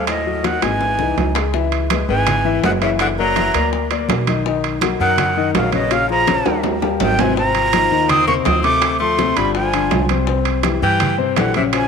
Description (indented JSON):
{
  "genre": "Afro-Cuban jazz",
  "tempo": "165 BPM",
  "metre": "4/4",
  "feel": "straight",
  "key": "unclear",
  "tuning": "A4 = 440 Hz",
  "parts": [
    { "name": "breathy concert flute", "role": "melody", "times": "0.0-11.9 s", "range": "D#5 to Eb6", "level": "-19 LUFS", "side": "right 4 dB", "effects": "none" },
    { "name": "bright tenor saxophone", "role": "second line", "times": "0.0-11.9 s", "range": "A2 to C4", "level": "-24 LUFS", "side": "left 9 dB", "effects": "none" },
    { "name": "warm concert grand piano", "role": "accompaniment", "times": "0.0-11.9 s", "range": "C3 to Fb5", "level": "-21 LUFS", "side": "left 10 dB", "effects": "none" },
    { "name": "upright bass", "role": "bass", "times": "0.0-11.9 s", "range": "Gb1 to G2", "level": "-23 LUFS", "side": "right 2 dB", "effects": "none" },
    { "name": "bongos", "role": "percussion", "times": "0.1-11.9 s", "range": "none", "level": "-27 LUFS", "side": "left 11 dB", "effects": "none" },
    { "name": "congas", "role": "percussion", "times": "0.1-11.9 s", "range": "none", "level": "-26 LUFS", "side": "right 2 dB", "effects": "none" },
    { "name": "timbales", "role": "percussion", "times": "0.1-11.9 s", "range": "none", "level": "-23 LUFS", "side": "right 15 dB", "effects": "none" }
  ],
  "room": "moderate plate reverb, RT60 2.8 s",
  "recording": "1960s-style stereo with parts hard left and right",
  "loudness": "-14 LUFS",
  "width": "side -6 dB against mid",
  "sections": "0.0-1.5 A section; 1.5-11.9 B section",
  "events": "drum fill 0.4-1.5, 5.9-7.4",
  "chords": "0.1 Ebdim; 0.8 Ab; 1.5 Dbm7; 3.0 Gbaug7; 4.5 Bmaj9; 5.9 Bbm7; 6.6 Eb; 7.4 Ab69; 8.8 Dm7; 9.6 G5; 10.3 C"
}